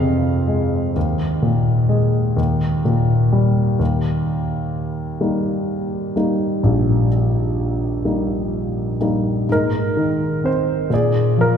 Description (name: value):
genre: acoustic folk-pop ballad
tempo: 42 BPM (dotted quarters)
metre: 6/8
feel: straight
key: unclear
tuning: A4 = 440 Hz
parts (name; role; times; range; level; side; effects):
- dark grand piano; solo; 0.0-11.6 s; Bb1 to F5; -16 LUFS; equal; none
room: wet church reverb, RT60 3.3 s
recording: recorded in a church or concert hall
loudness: -17 LUFS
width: side -8 dB against mid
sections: 0.0-3.8 A section; 3.8-9.5 B section; 9.5-11.6 C section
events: none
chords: 0.0 Fm; 1.0 Ebsus4; 2.4 Eb; 9.5 Abadd9; 10.9 Bb7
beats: | 0.96 2.38 | 3.80 5.22 | 6.64 8.06 | 9.48 10.90